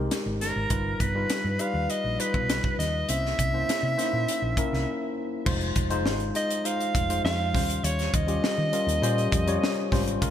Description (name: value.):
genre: polished 1980s jazz-funk pop.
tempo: 101 BPM.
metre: 4/4.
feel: straight.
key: unclear.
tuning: A4 = 441 Hz.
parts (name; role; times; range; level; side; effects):
tine electric piano; accompaniment; 0.0-10.3 s; G3 to Db5; -30 LUFS; left 2 dB; wide subtle chorus.
hollow-body short-scale fingered electric bass; bass; 0.0-10.3 s; F1 to Eb3; -29 LUFS; equal; tube saturation.
crisp fusion drum kit; drums; 0.1-10.3 s; crash cymbal, hi-hat, kick drum, snare drum; -29 LUFS; equal; none.
breathy soprano saxophone; melody; 0.4-9.9 s; Bb4 to F5; -29 LUFS; equal; none.
room: moderate plate reverb, RT60 2.0 s.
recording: bright 1980s-style digital production.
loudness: -24 LUFS.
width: side -10 dB against mid.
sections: 0.0-5.5 A section; 5.5-10.3 B section.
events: break 4.9-5.5.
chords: 0.0 Abmaj7; 0.7 G7b13; 3.1 C7b9; 5.5 Fm7; 7.5 Eb13.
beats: 0.11 | 0.70 1.30 1.89 2.49 | 3.08 3.68 4.27 4.87 | 5.46 6.06 6.65 7.25 | 7.84 8.44 9.03 9.62 | 10.22.